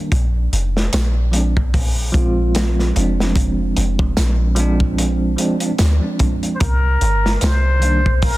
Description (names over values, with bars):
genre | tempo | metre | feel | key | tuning
trip hop | 74 BPM | 4/4 | swing 56% on 16ths | unclear | A4 = 441 Hz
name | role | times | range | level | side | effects
bell-like tine electric piano | accompaniment | 0.0-8.0 s | Eb3 to F4 | -22 LUFS | right 2 dB | tremolo, tape echo
soft 808-style bass | bass | 0.1-8.4 s | F1 to D2 | -17 LUFS | equal | none
crunchy breakbeat drum kit | drums | 0.1-8.4 s | hi-hat, kick drum, snare drum | -20 LUFS | equal | none
tambourine | percussion | 0.9-7.6 s | none | -35 LUFS | right 9 dB | none
trumpet with plunger mute | melody | 6.6-8.4 s | Bb4 to C5 | -20 LUFS | left 1 dB | tape echo
room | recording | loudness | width
small room ambience | dense, heavily limited modern master | -15 LUFS | side -17 dB against mid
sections
0.0-8.4 A section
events
none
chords
0.1 Bb9; 6.6 C7(no3)